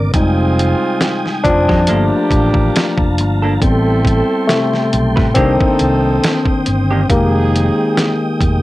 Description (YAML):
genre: R&B, neo-soul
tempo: 69 BPM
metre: 4/4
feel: swing 56% on 16ths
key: unclear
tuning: A4 = 441 Hz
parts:
  - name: barky tine electric piano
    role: accompaniment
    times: 0.0-8.6 s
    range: C3 to G4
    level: -16 LUFS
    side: left 2 dB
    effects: cassette tape
  - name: tonewheel organ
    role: sustained chords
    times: 0.0-8.6 s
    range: Ab3 to Eb6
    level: -24 LUFS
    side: right 1 dB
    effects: chorus vibrato, stopped rotary speaker, cassette tape
  - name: mellow fretless electric bass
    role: bass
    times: 0.0-8.6 s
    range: F1 to A2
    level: -16 LUFS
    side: equal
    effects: tube saturation
  - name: warm horn section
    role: stabs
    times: 0.1-8.4 s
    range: Ab3 to A4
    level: -21 LUFS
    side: right 3 dB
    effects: cassette tape
  - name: boom bap sampler-style drum kit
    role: drums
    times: 0.1-8.6 s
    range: hi-hat, kick drum, snare drum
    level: -17 LUFS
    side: equal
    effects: none
  - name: clean electric guitar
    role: second line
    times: 1.7-7.0 s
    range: Eb3 to B4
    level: -20 LUFS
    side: right 3 dB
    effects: cassette tape
room: light reverb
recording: home recording on cassette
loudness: -12 LUFS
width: side -17 dB against mid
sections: 0.0-8.6 A section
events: tine electric piano solo 0.0-8.6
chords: 0.1 Fm9; 1.9 Gm9; 3.6 Am9; 5.4 Cm9; 7.1 Fm9